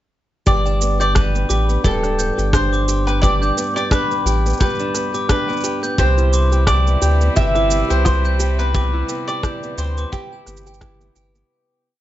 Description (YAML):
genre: folktronica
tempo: 87 BPM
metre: 4/4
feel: swing 56% on 16ths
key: G major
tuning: A4 = 440 Hz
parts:
  - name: mandolin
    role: melody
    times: 0.5-11.1 s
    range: G4 to E5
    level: -22 LUFS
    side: equal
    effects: vintage 12-bit sampler grit
  - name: nylon-string guitar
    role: arpeggios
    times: 0.5-12.0 s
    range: G2 to G4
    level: -24 LUFS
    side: right 1 dB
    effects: none
  - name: warm sub bass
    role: bass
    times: 0.5-11.4 s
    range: D1 to D2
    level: -18 LUFS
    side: equal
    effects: none
  - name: electronic shaker and rim click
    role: drums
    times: 0.5-11.5 s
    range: none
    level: -26 LUFS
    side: right 2 dB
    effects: none
  - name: kick drum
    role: drums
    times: 0.5-11.0 s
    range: none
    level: -22 LUFS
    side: equal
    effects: none
  - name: glockenspiel with brass mallets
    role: second line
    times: 0.7-11.3 s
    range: G5 to G6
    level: -28 LUFS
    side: left 2 dB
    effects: tape echo
  - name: rich string quartet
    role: sustained chords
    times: 6.0-11.5 s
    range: C3 to E4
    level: -29 LUFS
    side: equal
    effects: none
room: little or no reverb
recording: nothing above 7.8 kHz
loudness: -15 LUFS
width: side -13 dB against mid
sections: 0.5-11.5 groove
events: fade-out 7.8-11.5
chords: 0.5 G; 6.0 Cmaj7